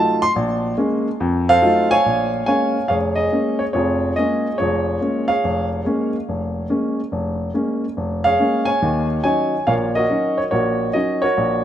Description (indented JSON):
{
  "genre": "solo jazz",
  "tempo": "142 BPM",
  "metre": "4/4",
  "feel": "swing 66% on 8ths",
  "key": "Bb minor",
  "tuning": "A4 = 440 Hz",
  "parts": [
    { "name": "warm grand piano", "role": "solo", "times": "0.0-11.6 s", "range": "F1 to C6", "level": "-17 LUFS", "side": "equal", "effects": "none" }
  ],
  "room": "moderate lush hall reverb, RT60 3.0 s",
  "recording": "rough home demo mix",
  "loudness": "-17 LUFS",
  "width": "side -11 dB against mid",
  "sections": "0.0-2.0 A section; 2.0-11.6 B section",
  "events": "grand piano solo 0.0-2.0",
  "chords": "0.4 Bbm7; 1.2 F7b9; 2.0 Bbm7; 8.8 Ebm7"
}